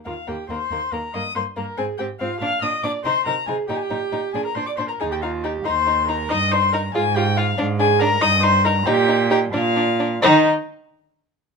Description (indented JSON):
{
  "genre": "quick classical-period movement for string quartet",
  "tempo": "93 BPM (dotted quarters)",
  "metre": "6/8",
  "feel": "straight",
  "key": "Eb major",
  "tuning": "A4 = 439 Hz",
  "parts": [
    { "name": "dark violin", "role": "melody", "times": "0.1-10.5 s", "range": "Eb5 to F6", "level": "-22 LUFS", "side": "left 7 dB", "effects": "none" },
    { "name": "warm violin", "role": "second line", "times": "0.1-10.5 s", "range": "Bb3 to F4", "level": "-25 LUFS", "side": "left 3 dB", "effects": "none" },
    { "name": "warm viola", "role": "accompaniment", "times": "0.1-10.5 s", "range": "Eb4 to F5", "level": "-24 LUFS", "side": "right 4 dB", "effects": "none" },
    { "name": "rich cello", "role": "bass", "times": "0.1-10.5 s", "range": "Eb2 to Eb3", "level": "-24 LUFS", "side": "right 4 dB", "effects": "none" }
  ],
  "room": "light reverb",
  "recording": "minimal, uncompressed stereo recording",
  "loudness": "-18 LUFS",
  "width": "side -5 dB against mid",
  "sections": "0.0-10.2 A section; 10.2-11.6 B section",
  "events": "none",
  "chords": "0.0 Eb5; 1.1 Eb6/G; 1.8 Fmadd9/Ab; 2.4 Bb; 3.0 Abadd9/C; 3.7 Eb; 4.3 Bb; 5.0 Eb69; 6.3 Eb/G; 6.9 Fm/Ab; 7.6 Bb7/Ab; 8.2 Eb/G; 8.9 Eb/Bb; 9.5 Bb; 10.2 N.C."
}